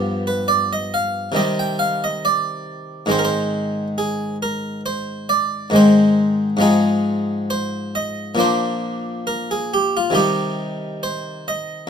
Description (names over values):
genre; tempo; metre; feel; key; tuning
classical, baroque-style suite movement for harpsichord; 68 BPM; 4/4; rubato; unclear; A4 = 440 Hz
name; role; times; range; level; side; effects
harpsichord; solo; 0.0-11.9 s; G2 to G5; -18 LUFS; equal; none
room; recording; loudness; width
light reverb; close, detailed microphones; -17 LUFS; side -7 dB against mid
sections
0.0-11.9 A section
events
none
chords
0.0 G7; 1.4 Cm; 3.1 Ab; 6.6 Fm7/Ab; 8.4 Bb; 10.2 Cm